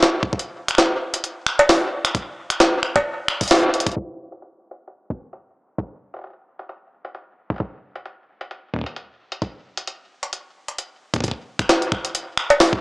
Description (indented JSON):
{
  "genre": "IDM",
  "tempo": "132 BPM",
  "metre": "4/4",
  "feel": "swing 56% on 16ths",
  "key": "none",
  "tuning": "none",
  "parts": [
    { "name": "jungle sampler-style drum kit", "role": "drums", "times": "0.0-12.7 s", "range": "cowbell, finger snaps, hi-hat, snare drum", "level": "-18 LUFS", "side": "equal", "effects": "low-pass filter on snare, low-pass filter on hats, low-pass filter on perc, low-pass filter on room, dub echo" },
    { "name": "electronic kick drum", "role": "drums", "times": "0.2-12.8 s", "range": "none", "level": "-25 LUFS", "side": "equal", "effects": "none" }
  ],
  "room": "wet spring reverb, RT60 1.5 s",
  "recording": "echo-heavy mix, low-pass filter, small speaker sound",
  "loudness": "-19 LUFS",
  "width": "side -26 dB against mid",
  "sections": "0.0-4.0 A section; 4.0-11.2 B section; 11.2-12.8 A section",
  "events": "band accent 3.5; drum fill 3.7; filter sweep on drum 4.0-11.2; filter sweep 4.0-11.2",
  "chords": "none",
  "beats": "| 0.33 0.78 1.24 1.69 | 2.15 2.60 3.06 3.51 | 3.97 4.42 4.88 5.33 | 5.78 6.24 6.69 7.15 | 7.60 8.06 8.51 8.97 | 9.42 9.88 10.33 10.78 | 11.24 11.69 12.15 12.60"
}